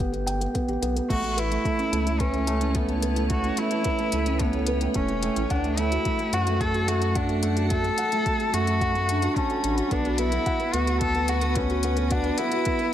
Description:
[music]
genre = piano and strings electronica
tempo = 109 BPM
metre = 4/4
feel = straight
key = unclear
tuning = A4 = 438 Hz
[part]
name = felt-muted upright piano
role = riff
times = 0.0-12.9 s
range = A3 to A5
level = -27 LUFS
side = right 1 dB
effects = ping-pong delay
[part]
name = warm sub bass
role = bass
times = 0.0-12.3 s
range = E1 to F#2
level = -28 LUFS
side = equal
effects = sidechain pumping
[part]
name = electronic kick drum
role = drums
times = 0.0-12.8 s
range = none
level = -30 LUFS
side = equal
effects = overdrive
[part]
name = organic electronic drum kit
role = drums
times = 0.0-12.9 s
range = crash cymbal, hi-hat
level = -34 LUFS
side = left 4 dB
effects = overdrive
[part]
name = warm cello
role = melody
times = 1.1-12.9 s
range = B3 to A4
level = -27 LUFS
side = equal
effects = ping-pong delay
[part]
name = granular cloud pad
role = sustained chords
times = 2.1-12.9 s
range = E4 to B5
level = -33 LUFS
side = right 1 dB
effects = built-in reverb, sidechain pumping
[sound]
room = light reverb, digital ambience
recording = none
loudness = -22 LUFS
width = side -11 dB against mid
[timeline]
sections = 0.0-12.9 A section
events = none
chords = 0.0 Em (rootless); 1.1 Aadd9; 5.5 D; 9.9 Bm

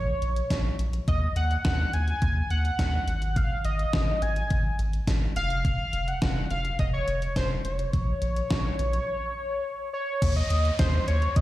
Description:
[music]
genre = synth-pop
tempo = 105 BPM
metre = 4/4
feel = straight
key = Eb dorian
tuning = A4 = 440 Hz
[part]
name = octave-doubled lead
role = melody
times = 0.0-11.4 s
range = C5 to Ab5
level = -30 LUFS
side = equal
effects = chorus, tape echo
[part]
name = round analog bass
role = bass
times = 0.0-11.4 s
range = F1 to Eb2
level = -27 LUFS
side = equal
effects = none
[part]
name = gated 80s digital drum machine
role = drums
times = 0.2-11.4 s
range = crash cymbal, hi-hat, kick drum, snare drum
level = -28 LUFS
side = equal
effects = gated reverb, gated reverb snare, overdrive
[part]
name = downlifter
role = sound effects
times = 10.2-11.4 s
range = none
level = -37 LUFS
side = equal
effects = none
[sound]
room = light reverb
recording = played on a big sound system in a bare room, large studio reverb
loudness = -24 LUFS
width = side -15 dB against mid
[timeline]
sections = 0.0-10.2 A section; 10.2-11.4 B section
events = break 9.1-10.2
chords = 0.0 Bbm; 1.1 Ebm; 3.1 Ab5; 5.4 Ebm9/F (rootless); 7.9 Bbm; 10.2 Dbmaj7sus2

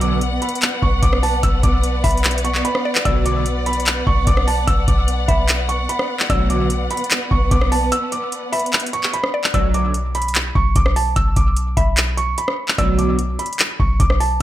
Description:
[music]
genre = hip hop, trap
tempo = 148 BPM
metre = 4/4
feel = half-time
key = B minor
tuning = A4 = 440 Hz
[part]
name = felt-muted upright piano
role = melody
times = 0.0-14.4 s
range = A5 to E6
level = -23 LUFS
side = right 2 dB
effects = digital delay
[part]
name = mallet-like synth pluck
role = second line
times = 0.0-14.4 s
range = D5 to E5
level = -28 LUFS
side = left 3 dB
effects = chorus, digital delay
[part]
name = dark symphonic string section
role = sustained chords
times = 0.0-9.5 s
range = B3 to F#5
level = -24 LUFS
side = left 1 dB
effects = none
[part]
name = sync-sweep polysynth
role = stabs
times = 0.0-0.2, 3.1-3.4, 6.3-6.7, 9.5-9.9, 12.8-13.2 s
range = D2 to F#3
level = -23 LUFS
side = right 2 dB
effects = chorus, digital delay
[part]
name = clean 808-style bass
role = bass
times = 0.0-14.4 s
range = B1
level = -20 LUFS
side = equal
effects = none
[part]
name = booming analog drum machine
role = drums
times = 0.0-14.3 s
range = handclaps, hi-hat, kick drum, rim click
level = -19 LUFS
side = equal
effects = none
[sound]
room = little or no reverb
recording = none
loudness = -16 LUFS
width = side -13 dB against mid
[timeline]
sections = 0.0-9.5 A section; 9.5-14.4 A section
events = break 7.9-9.5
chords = 0.0 Bm

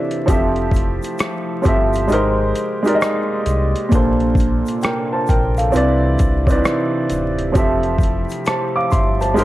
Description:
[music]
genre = lo-fi hip hop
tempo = 66 BPM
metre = 4/4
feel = swing 65% on 16ths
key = F major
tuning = A4 = 439 Hz
[part]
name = warm upright piano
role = accompaniment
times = 0.0-9.4 s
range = Bb2 to D6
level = -18 LUFS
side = right 1 dB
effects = cassette tape, low-pass filter
[part]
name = warbly tape-like pad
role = sustained chords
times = 0.0-9.4 s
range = C3 to B4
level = -27 LUFS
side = equal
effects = chorus, built-in reverb, low-pass filter
[part]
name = boom bap sampler-style drum kit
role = drums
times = 0.1-9.4 s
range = hi-hat, kick drum, rim click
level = -19 LUFS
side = equal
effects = none
[part]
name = sub bass with octave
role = bass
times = 0.3-9.4 s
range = D1 to C2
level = -21 LUFS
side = equal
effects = none
[part]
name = egg shaker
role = percussion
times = 0.3-9.4 s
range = none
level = -45 LUFS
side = left 9 dB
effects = none
[sound]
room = light reverb, digital ambience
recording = vinyl crackle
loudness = -15 LUFS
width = side -15 dB against mid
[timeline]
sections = 0.0-9.4 A section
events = break 0.0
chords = 0.3 Fmaj9; 2.1 Abmaj9; 3.9 Bbmaj9; 5.7 Cmaj9; 7.5 Fmaj9

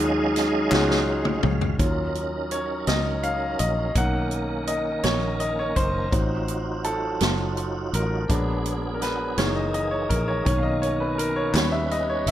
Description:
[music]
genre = slow gospel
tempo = 55 BPM (dotted quarters)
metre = 6/8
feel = straight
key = Eb minor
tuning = A4 = 440 Hz
[part]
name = clear baby grand piano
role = accompaniment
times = 0.0-12.3 s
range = Eb3 to F#5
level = -26 LUFS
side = left 1 dB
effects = none
[part]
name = tonewheel organ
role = sustained chords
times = 0.0-12.3 s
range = B2 to F5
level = -29 LUFS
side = right 3 dB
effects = slow rotary speaker, chorus vibrato
[part]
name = fingered electric bass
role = bass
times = 0.0-12.3 s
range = F#1 to Eb2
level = -28 LUFS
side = equal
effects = none
[part]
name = swinging big-band drum kit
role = drums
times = 0.0-12.3 s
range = hi-hat, kick drum, snare drum, toms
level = -26 LUFS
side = equal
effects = none
[part]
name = group handclap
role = percussion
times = 0.7-1.1, 11.5-11.9 s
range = none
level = -29 LUFS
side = left 6 dB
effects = none
[sound]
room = little or no reverb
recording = none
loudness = -22 LUFS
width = side -12 dB against mid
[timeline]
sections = 0.0-1.8 A section; 1.8-12.3 B section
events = tonewheel organ solo 0.0-1.8; drum fill 0.7-1.8; grand piano solo 1.8-12.3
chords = 0.0 Ebm11; 1.8 Ebm7; 4.0 Bmaj9; 6.1 F7b9/A; 8.3 Bb7b9b13; 9.4 Gb13; 10.5 Bmaj9; 11.5 Eb7b13

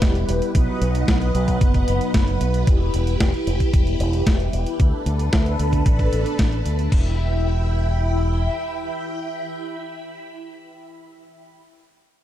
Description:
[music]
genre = italo disco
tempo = 113 BPM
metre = 4/4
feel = straight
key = E minor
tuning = A4 = 440 Hz
[part]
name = string machine, full ensemble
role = sustained chords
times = 0.0-11.5 s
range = B3 to B5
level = -26 LUFS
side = left 1 dB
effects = phaser, ensemble chorus
[part]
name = mellow synth brass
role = stabs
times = 0.0-2.6 s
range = F#3 to B4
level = -26 LUFS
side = right 2 dB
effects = chorus, ping-pong delay
[part]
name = fingered electric bass with an envelope filter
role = bass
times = 0.0-8.5 s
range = E1 to D2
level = -22 LUFS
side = equal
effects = none
[part]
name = clean 12-bit digital drum machine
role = drums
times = 0.0-7.0 s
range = crash cymbal, hi-hat, snare drum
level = -27 LUFS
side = equal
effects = none
[part]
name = electronic kick drum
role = drums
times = 0.0-7.0 s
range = none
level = -18 LUFS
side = equal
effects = none
[sound]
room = light reverb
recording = dark, warm production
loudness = -18 LUFS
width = side -12 dB against mid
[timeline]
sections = 0.0-6.9 A section; 6.9-11.2 B section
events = none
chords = 0.0 Em; 0.5 B; 2.7 Em; 4.8 Bm7/D; 6.9 Em

